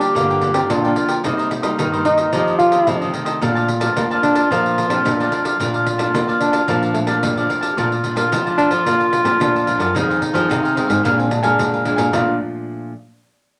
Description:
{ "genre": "samba and choro", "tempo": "110 BPM", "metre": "4/4", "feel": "straight", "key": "Bb major", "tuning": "A4 = 441 Hz", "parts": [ { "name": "warm clarinet", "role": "second line", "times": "0.0-12.4 s", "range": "D4 to G4", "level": "-24 LUFS", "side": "equal", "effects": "none" }, { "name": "cavaquinho", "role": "accompaniment", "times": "0.0-12.4 s", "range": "D4 to A5", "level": "-24 LUFS", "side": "equal", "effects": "none" }, { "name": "nylon-string guitar", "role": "accompaniment", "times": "0.0-12.9 s", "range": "F2 to Eb4", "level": "-28 LUFS", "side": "equal", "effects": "none" }, { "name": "nylon-string guitar", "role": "bass", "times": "0.0-12.4 s", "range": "F2 to Bb3", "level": "-26 LUFS", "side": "equal", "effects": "none" }, { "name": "pandeiro", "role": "percussion", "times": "0.0-12.3 s", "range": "none", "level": "-27 LUFS", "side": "equal", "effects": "none" }, { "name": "mellow trombone", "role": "melody", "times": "0.2-12.4 s", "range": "A3 to F4", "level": "-22 LUFS", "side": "equal", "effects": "none" } ], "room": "wet small room ambience, RT60 0.5 s", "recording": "none", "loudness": "-18 LUFS", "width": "mono", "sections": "0.0-7.8 A section; 7.8-12.1 B section; 12.1-13.6 C section", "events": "none", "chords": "0.0 Gm7; 1.2 Cm7; 2.3 F7; 3.4 Bbmaj7; 10.0 Fm7; 11.0 Bb7; 12.1 Bbmaj7" }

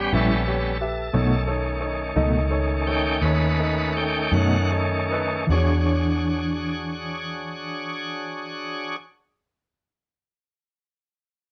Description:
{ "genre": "blues", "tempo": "50-60 BPM (dotted quarters)", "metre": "12/8", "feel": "straight", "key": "E mixolydian", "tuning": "A4 = 440 Hz", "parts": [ { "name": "clear upright piano", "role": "accompaniment", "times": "0.0-9.0 s", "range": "D4 to E5", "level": "-32 LUFS", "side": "equal", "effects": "none" }, { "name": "bright tonewheel organ", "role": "sustained chords", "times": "0.0-9.0 s", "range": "D#3 to G5", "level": "-29 LUFS", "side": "equal", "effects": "slow rotary speaker, overdrive" }, { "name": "vintage muted fingered electric bass", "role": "bass", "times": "0.0-8.9 s", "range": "A1 to F#2", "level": "-27 LUFS", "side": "equal", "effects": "none" }, { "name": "mellow electric guitar", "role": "accompaniment", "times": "0.1-9.1 s", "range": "A2 to C#5", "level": "-28 LUFS", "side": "equal", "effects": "tremolo" } ], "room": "light reverb", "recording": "none", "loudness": "-24 LUFS", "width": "mono", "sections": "0.0-5.5 A section; 5.5-10.3 B section", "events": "slowing down 0.0-5.5; tonewheel organ solo 0.0-5.5", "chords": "0.0 A7; 1.1 B7; 5.5 E13" }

